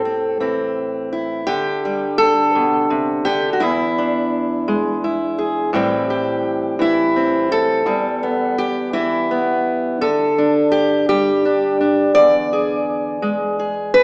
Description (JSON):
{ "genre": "folk, solo fingerstyle acoustic guitar", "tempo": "56 BPM (dotted quarters)", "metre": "6/8", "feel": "straight", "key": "unclear", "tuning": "A4 = 443 Hz", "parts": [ { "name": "fingerpicked steel-string acoustic guitar", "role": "solo", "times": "0.0-14.0 s", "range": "E2 to D5", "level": "-15 LUFS", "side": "equal", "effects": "none" } ], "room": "moderate scoring stage reverb, RT60 1.6 s", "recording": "recorded in a church or concert hall, small speaker sound", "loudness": "-15 LUFS", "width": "side -38 dB against mid", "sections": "0.0-1.5 A section; 1.5-14.0 B section", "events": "none", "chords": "0.0 Am; 1.5 Dsus4; 3.6 E7; 5.7 Am7; 7.9 Em; 10.0 Dsus4; 12.2 E7" }